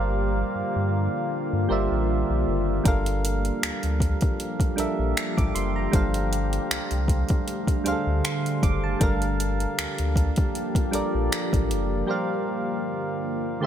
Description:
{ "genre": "contemporary R&B", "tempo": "78 BPM", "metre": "4/4", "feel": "swing 54% on 16ths", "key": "G dorian", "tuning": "A4 = 439 Hz", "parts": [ { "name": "soft electric-piano-like synth keys", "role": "accompaniment", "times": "0.0-13.7 s", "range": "D3 to D6", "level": "-28 LUFS", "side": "right 2 dB", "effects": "chorus" }, { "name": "deep dark ambient pad", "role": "sustained chords", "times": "0.0-13.7 s", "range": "G2 to G4", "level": "-29 LUFS", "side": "left 1 dB", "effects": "chorus, built-in reverb" }, { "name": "warm sub bass", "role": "bass", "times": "0.0-12.0 s", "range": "F#1 to G2", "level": "-26 LUFS", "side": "equal", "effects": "none" }, { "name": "smooth R&B drum kit", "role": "drums", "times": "2.9-11.9 s", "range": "finger snaps, hi-hat, kick drum", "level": "-25 LUFS", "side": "equal", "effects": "none" } ], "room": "digital ambience", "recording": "none", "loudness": "-22 LUFS", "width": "side -10 dB against mid", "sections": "0.0-13.7 A section", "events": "break 12.1-13.7", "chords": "0.0 C9sus4/G; 5.9 F69/G; 9.0 Gm7; 12.1 C9sus4/G", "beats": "0.55 1.32 2.09 | 2.85 3.62 4.39 5.16 | 5.93 6.70 7.47 8.24 | 9.01 9.78 10.55 11.32 | 12.09 12.86 13.62" }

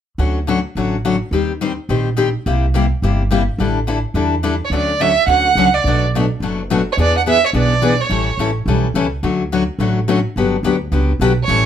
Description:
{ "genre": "acoustic string swing (jazz manouche)", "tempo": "212 BPM", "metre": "4/4", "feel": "swing 58% on 8ths", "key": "D major", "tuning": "A4 = 440 Hz", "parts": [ { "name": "picked steel-string acoustic guitar", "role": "accompaniment", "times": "0.2-11.7 s", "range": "B2 to C5", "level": "-18 LUFS", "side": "left 5 dB", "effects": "none" }, { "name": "upright bass", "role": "bass", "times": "0.2-11.7 s", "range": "F#1 to E2", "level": "-19 LUFS", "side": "right 2 dB", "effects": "none" }, { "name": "rich violin", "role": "melody", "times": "4.6-8.4, 11.4-11.7 s", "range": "C#5 to F#5", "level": "-15 LUFS", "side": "right 6 dB", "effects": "none" } ], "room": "moderate studio reverb, RT60 0.6 s", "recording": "none", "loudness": "-14 LUFS", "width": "side -9 dB against mid", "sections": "0.2-4.7 A section; 4.7-11.7 B section", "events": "none", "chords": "0.2 Dmaj7; 1.3 Eb6; 2.5 C7; 3.6 A7sus4; 4.7 Dmaj7; 5.8 Bm7; 7.0 E7; 8.1 A7; 9.2 Dmaj7; 10.4 Gmaj7", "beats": "| 0.19 0.47 0.76 1.04 | 1.32 1.60 1.89 2.17 | 2.45 2.73 3.02 3.30 | 3.58 3.87 4.15 4.43 | 4.71 5.00 5.28 5.56 | 5.84 6.12 6.41 6.69 | 6.97 7.25 7.54 7.82 | 8.10 8.38 8.66 8.95 | 9.23 9.51 9.79 10.08 | 10.36 10.64 10.92 11.21 | 11.49" }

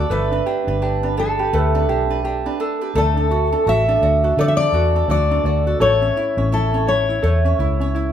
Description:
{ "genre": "acoustic pop", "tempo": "84 BPM", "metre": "4/4", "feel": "swing 60% on 16ths", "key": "D major", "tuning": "A4 = 440 Hz", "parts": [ { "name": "fingerpicked steel-string acoustic guitar", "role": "melody", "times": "0.0-8.1 s", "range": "A4 to E5", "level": "-20 LUFS", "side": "left 2 dB", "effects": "none" }, { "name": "ukulele", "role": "accompaniment", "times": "0.0-8.1 s", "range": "C#4 to D5", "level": "-24 LUFS", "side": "right 2 dB", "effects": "none" }, { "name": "mandolin", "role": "arpeggios", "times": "0.0-8.1 s", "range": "A3 to C#5", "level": "-25 LUFS", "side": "right 8 dB", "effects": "none" }, { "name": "vintage muted fingered electric bass", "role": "bass", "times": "0.0-8.1 s", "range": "G1 to D3", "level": "-20 LUFS", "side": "equal", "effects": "none" } ], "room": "moderate large studio reverb, RT60 0.9 s", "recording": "band playing live in one room", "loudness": "-16 LUFS", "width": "side -9 dB against mid", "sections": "0.0-8.1 A section", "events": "none", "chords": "0.1 Gadd9; 3.0 D; 5.8 A", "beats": "| 0.10 0.82 1.53 2.24 | 2.96 3.67 4.38 5.10 | 5.81 6.52 7.24 7.95" }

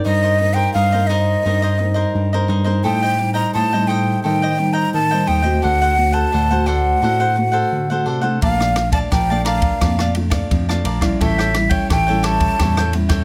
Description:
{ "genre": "samba and choro", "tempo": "86 BPM", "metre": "4/4", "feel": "straight", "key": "unclear", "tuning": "A4 = 440 Hz", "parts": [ { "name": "breathy mellow silver concert flute", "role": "melody", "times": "0.0-12.9 s", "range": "Eb5 to Bb5", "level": "-22 LUFS", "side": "equal", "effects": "plate reverb" }, { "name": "cavaquinho", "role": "accompaniment", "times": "0.0-13.2 s", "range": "D4 to A5", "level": "-27 LUFS", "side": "equal", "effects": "none" }, { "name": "nylon-string guitar", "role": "accompaniment", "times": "0.0-13.2 s", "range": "A2 to Bb4", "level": "-25 LUFS", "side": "equal", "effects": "none" }, { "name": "bell-like tine electric piano", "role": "bass", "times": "0.1-13.2 s", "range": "A1 to Eb3", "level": "-22 LUFS", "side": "equal", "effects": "none" }, { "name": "compact cocktail drum kit", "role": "drums", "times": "8.4-13.2 s", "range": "kick drum, ride cymbal, rim click", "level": "-23 LUFS", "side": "equal", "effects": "none" } ], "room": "moderate small room reverb, RT60 0.6 s", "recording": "none", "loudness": "-17 LUFS", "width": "mono", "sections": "0.0-13.2 A section", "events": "none", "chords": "0.1 Cm7/G; 2.8 Am7b5; 5.6 D7; 8.4 Bbmaj7; 11.2 A7", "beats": "| 0.05 0.75 1.45 2.15 | 2.84 3.54 4.24 4.94 | 5.63 6.33 7.03 7.72 | 8.42 9.12 9.82 10.51 | 11.21 11.91 12.60" }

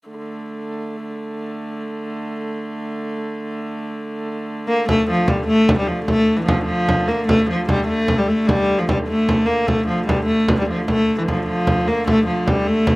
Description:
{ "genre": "medieval dance", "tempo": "100 BPM (dotted quarters)", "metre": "6/8", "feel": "straight", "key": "D minor", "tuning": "A4 = 442 Hz", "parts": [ { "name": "clear hurdy-gurdy", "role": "drone", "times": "0.1-13.0 s", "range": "D3 to A3", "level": "-27 LUFS", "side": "right 1 dB", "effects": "none" }, { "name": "clear viola da gamba", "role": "melody", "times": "4.7-13.0 s", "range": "E3 to Bb3", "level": "-17 LUFS", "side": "equal", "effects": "none" }, { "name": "frame drum", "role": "percussion", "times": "4.9-13.0 s", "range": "none", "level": "-22 LUFS", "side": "right 1 dB", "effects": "none" } ], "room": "light reverb", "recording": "recorded outdoors, with no room sound", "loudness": "-17 LUFS", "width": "side -21 dB against mid", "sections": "0.1-4.9 A section; 4.9-13.0 B section", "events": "none", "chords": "none", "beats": "| 0.08 0.68 | 1.28 1.88 | 2.48 3.08 | 3.68 4.28 | 4.88 5.48 | 6.08 6.68 | 7.28 7.88 | 8.48 9.08 | 9.68 10.28 | 10.87 11.47 | 12.07 12.67" }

